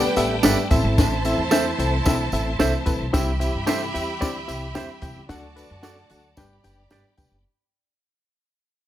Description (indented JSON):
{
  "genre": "uptempo 1960s-style soul",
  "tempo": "111 BPM",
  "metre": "4/4",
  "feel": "straight",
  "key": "G major",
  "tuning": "A4 = 440 Hz",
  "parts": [
    { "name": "rich studio violin section", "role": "second line", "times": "0.0-7.4 s", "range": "D4 to B5", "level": "-29 LUFS", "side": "right 2 dB", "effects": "none" },
    { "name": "barky reed electric piano", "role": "accompaniment", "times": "0.0-7.4 s", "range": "G2 to G5", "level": "-26 LUFS", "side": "left 2 dB", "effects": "fast tremolo" },
    { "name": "tonewheel organ", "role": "sustained chords", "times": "0.0-7.4 s", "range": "E3 to D4", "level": "-33 LUFS", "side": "right 1 dB", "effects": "fast rotary speaker, chorus vibrato" },
    { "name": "upright bass", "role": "bass", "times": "0.0-7.4 s", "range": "F1 to G2", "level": "-26 LUFS", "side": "equal", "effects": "none" },
    { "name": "compact cocktail drum kit", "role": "drums", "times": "0.2-7.3 s", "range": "hi-hat, kick drum, snare drum", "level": "-23 LUFS", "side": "left 1 dB", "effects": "none" },
    { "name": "tambourine", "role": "percussion", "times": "0.2-7.3 s", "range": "none", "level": "-34 LUFS", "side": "right 3 dB", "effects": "none" },
    { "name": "semi-hollow electric guitar", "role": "stabs", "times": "0.4-7.1 s", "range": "D4 to E5", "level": "-25 LUFS", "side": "right 6 dB", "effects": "none" }
  ],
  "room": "light reverb, small room ambience",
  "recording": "none",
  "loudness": "-19 LUFS",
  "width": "side -12 dB against mid",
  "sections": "0.0-7.5 A section",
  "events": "fade-out 0.0-7.5",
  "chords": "0.0 Gadd9; 0.7 Am; 3.1 C; 5.3 D; 6.4 G",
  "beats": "0.44 | 0.98 1.52 2.06 2.60 | 3.14 3.68 4.22 4.76 | 5.30 5.84 6.38 6.92"
}